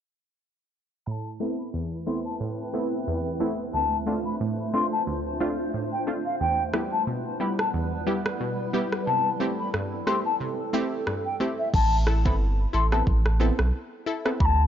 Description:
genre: dancehall.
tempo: 90 BPM.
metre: 4/4.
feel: swing 56% on 16ths.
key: A minor.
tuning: A4 = 440 Hz.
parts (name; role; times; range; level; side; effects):
mellow hollow wooden flute; melody; 1.1-14.6 s; E5 to C6; -28 LUFS; left 3 dB; low-pass filter, analog delay.
analog pluck; accompaniment; 1.1-14.4 s; D2 to A4; -29 LUFS; right 1 dB; chorus, low-pass filter.
granular cloud pad; sustained chords; 1.7-11.7 s; G3 to C5; -32 LUFS; right 1 dB; built-in reverb, sidechain pumping, low-pass filter.
afro-pop drum kit; drums; 6.7-14.6 s; crash cymbal, kick drum, rim click; -27 LUFS; equal; none.
saturated sub bass; bass; 11.7-14.7 s; G1 to D2; -22 LUFS; equal; none.
room: light reverb.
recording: dry, gritty hardware recording, nothing above 7.5 kHz.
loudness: -24 LUFS.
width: side -9 dB against mid.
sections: 1.1-11.7 A section; 11.7-14.7 B section.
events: filter sweep 1.1-11.7.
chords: 1.1 Amadd9; 3.7 Dm7; 6.4 Em; 9.1 C6; 11.7 Amadd9.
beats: | 1.07 1.74 2.40 3.07 | 3.74 4.41 5.07 5.74 | 6.41 7.07 7.74 8.40 | 9.07 9.74 10.40 11.07 | 11.74 12.40 13.07 13.74 | 14.40.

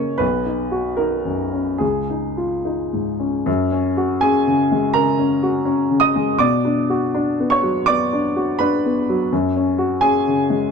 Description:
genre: neoclassical minimalist piano.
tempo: 70-86 BPM.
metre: 4/4.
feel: rubato.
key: F# major.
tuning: A4 = 440 Hz.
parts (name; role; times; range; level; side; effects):
warm baby grand piano; solo; 0.0-10.7 s; B1 to D#6; -17 LUFS; left 1 dB; none.
room: moderate booth ambience, RT60 0.2 s.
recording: none.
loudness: -17 LUFS.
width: side -6 dB against mid.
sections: 0.0-3.5 A section; 3.5-10.7 B section.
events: none.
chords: 0.2 Badd9; 1.8 C#add9; 3.5 F#add9; 6.4 Bm; 9.3 F#sus2.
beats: | 0.22 0.99 1.82 2.65 | 3.47 4.22 4.95 5.67 | 6.40 7.13 7.87 8.60 | 9.31 10.02.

